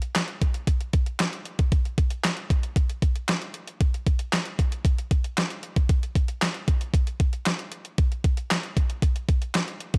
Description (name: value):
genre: funk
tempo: 115 BPM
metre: 4/4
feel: straight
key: none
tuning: none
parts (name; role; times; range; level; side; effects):
- crisp 8-bit digital drum machine; drums; 0.0-10.0 s; handclaps, hi-hat, kick drum, snare drum; -25 LUFS; equal; overdrive
room: light reverb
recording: none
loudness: -26 LUFS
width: mono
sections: 0.0-10.0 A section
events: none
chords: none